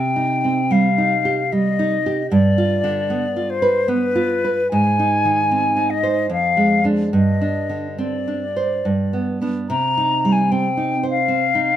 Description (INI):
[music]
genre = romantic duo for flute and classical guitar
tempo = 69-77 BPM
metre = 3/4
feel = rubato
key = C minor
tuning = A4 = 440 Hz
[part]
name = bright silver concert flute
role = melody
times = 0.0-11.8 s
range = B4 to Bb5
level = -20 LUFS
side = left 4 dB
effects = plate reverb
[part]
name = nylon-string guitar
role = accompaniment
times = 0.0-11.8 s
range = F2 to C5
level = -19 LUFS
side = right 2 dB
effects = none
[sound]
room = moderate studio ambience, RT60 0.5 s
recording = none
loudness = -16 LUFS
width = side -11 dB against mid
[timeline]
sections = 0.0-11.8 A section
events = none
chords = 0.0 Cm; 2.3 G7; 4.7 Ab; 6.3 Ddim/F; 7.1 Gsus4; 8.8 G; 9.7 Cm